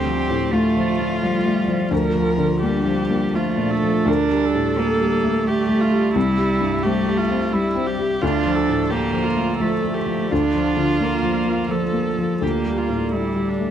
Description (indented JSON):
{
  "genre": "neoclassical piano and strings",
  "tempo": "86 BPM",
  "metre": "3/4",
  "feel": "rubato",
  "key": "D minor",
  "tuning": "A4 = 440 Hz",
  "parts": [
    { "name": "rich cello", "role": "second line", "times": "0.0-13.7 s", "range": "F3 to D4", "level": "-22 LUFS", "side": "right 5 dB", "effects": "none" },
    { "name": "felt-muted upright piano", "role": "accompaniment", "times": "0.0-13.7 s", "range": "C2 to A4", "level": "-22 LUFS", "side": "left 4 dB", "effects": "none" },
    { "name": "rich viola", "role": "accompaniment", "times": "0.0-13.7 s", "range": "D4 to Bb4", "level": "-25 LUFS", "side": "right 1 dB", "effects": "none" },
    { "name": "warbly tape-like pad", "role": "sustained chords", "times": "0.0-13.7 s", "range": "G3 to E5", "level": "-29 LUFS", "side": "left 1 dB", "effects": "chorus, built-in reverb" }
  ],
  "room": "light reverb",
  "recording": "dark, warm production",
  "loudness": "-18 LUFS",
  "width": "side -9 dB against mid",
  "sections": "0.0-13.7 A section",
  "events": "none",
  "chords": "0.0 Dm; 1.9 Bb/D; 6.2 C; 8.2 Dm; 10.3 Bb/D; 12.4 Gmadd9/D"
}